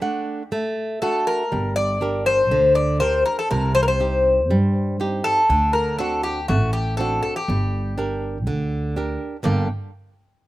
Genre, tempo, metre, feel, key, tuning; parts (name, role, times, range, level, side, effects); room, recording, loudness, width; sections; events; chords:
greek folk, Greek bouzouki band; 121 BPM; 4/4; straight; G harmonic minor; A4 = 440 Hz
Greek bouzouki; melody; 0.0-9.7 s; F#4 to D5; -20 LUFS; left 2 dB; slapback echo
flamenco guitar; accompaniment; 0.0-9.7 s; G2 to F#5; -26 LUFS; right 2 dB; slapback echo
upright bass; bass; 1.5-9.7 s; G1 to G2; -23 LUFS; right 1 dB
little or no reverb; recorded outdoors, with no room sound; -19 LUFS; side -16 dB against mid
0.0-9.4 A section; 9.4-10.5 B section
0.0 D; 1.5 Gm; 3.5 Cm; 5.5 D7; 7.5 Gm